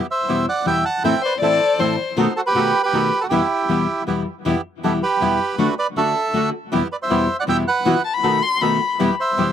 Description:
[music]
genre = tango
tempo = 159 BPM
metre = 3/4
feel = rubato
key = E minor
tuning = A4 = 440 Hz
[part]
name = bandoneon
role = stabs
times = 0.0-9.5 s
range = A3 to A4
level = -26 LUFS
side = right 5 dB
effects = slapback echo
[part]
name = bandoneon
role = melody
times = 0.1-9.5 s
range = E4 to A5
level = -20 LUFS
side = right 3 dB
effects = slapback echo
[part]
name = nylon-string guitar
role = accompaniment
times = 0.3-9.5 s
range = E2 to F#4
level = -21 LUFS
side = left 3 dB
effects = slapback echo
[part]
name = warm violin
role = second line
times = 1.2-2.3, 8.0-9.1 s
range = C5 to C6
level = -19 LUFS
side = left 6 dB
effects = slapback echo
[sound]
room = little or no reverb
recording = recorded outdoors, with no room sound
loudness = -17 LUFS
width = side -9 dB against mid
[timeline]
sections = 0.0-4.5 A section; 4.5-9.5 B section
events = none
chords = 0.0 Em; 1.0 Am; 2.2 B7; 3.3 Em; 5.6 D; 6.7 Em; 7.9 Bsus4; 8.2 B7; 9.0 Em

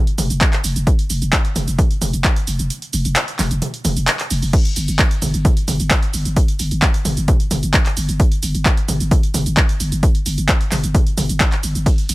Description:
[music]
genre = driving peak-time techno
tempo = 131 BPM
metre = 4/4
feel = straight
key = unclear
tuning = A4 = 440 Hz
[part]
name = punchy analog drum machine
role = drums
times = 0.1-12.1 s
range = crash cymbal, handclaps, hi-hat, ride cymbal, shaker, toms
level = -20 LUFS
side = right 1 dB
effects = none
[part]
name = growling 808-style bass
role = bass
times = 0.2-12.1 s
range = F1 to G1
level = -21 LUFS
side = equal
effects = overdrive, sidechain pumping, low-pass filter
[part]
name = electronic kick drum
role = drums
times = 0.4-12.0 s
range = none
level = -15 LUFS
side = equal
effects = none
[sound]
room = little or no reverb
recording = none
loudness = -15 LUFS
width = side -20 dB against mid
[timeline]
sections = 0.0-12.1 A section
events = kick drops out 2.7-4.5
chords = none

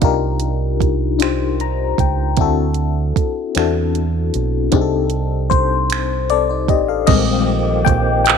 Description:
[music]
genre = slow six-eight R&B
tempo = 51 BPM (dotted quarters)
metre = 6/8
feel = straight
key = C minor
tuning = A4 = 440 Hz
[part]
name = FM electric piano with tremolo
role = accompaniment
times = 0.0-8.4 s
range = Eb3 to Bb5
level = -18 LUFS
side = left 11 dB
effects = phaser
[part]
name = deep dub fingered electric bass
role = bass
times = 0.0-8.4 s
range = A1 to E2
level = -19 LUFS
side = right 2 dB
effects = none
[part]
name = smooth R&B drum kit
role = drums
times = 0.0-8.4 s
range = crash cymbal, finger snaps, handclaps, hi-hat, kick drum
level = -18 LUFS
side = right 8 dB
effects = none
[part]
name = tonewheel organ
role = sustained chords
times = 7.1-8.4 s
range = Eb3 to G4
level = -21 LUFS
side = right 3 dB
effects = overdrive, chorus vibrato, slow rotary speaker
[sound]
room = light reverb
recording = 1960s-style stereo with parts hard left and right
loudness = -15 LUFS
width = side -6 dB against mid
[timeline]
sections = 0.0-7.1 A section; 7.1-8.4 B section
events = FM electric piano fill 1.2-2.4; FM electric piano solo 7.1-8.4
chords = 0.0 Cm11; 2.4 D9; 4.7 F13 (rootless); 7.1 Bb13sus4

